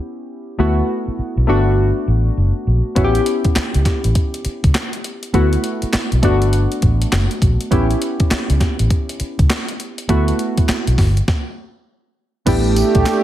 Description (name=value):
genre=R&B, new jack swing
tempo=101 BPM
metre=4/4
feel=swing 63% on 16ths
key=unclear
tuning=A4 = 441 Hz
part: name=warm analog keys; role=accompaniment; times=0.0-13.2 s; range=A3 to G4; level=-20 LUFS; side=left 1 dB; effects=chorus
part: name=vintage muted fingered electric bass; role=bass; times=0.6-13.0 s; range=F#1 to D2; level=-16 LUFS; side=equal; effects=none
part: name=clean 12-bit digital drum machine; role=drums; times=3.0-13.2 s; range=crash cymbal, handclaps, hi-hat, kick drum, snare drum, tambourine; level=-18 LUFS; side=equal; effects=none
part: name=warm analog pad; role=sustained chords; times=12.5-13.2 s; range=A3 to G4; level=-16 LUFS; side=right 3 dB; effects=chorus
room=light reverb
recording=none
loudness=-14 LUFS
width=side -13 dB against mid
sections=0.0-12.5 A section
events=stop 11.3-12.5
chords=0.0 A9 (rootless); 0.6 D6; 1.5 Gmaj9; 3.0 A9; 5.3 D6; 6.2 Gmaj9; 7.7 A9; 10.1 D6; 11.0 N.C.; 12.5 A7sus4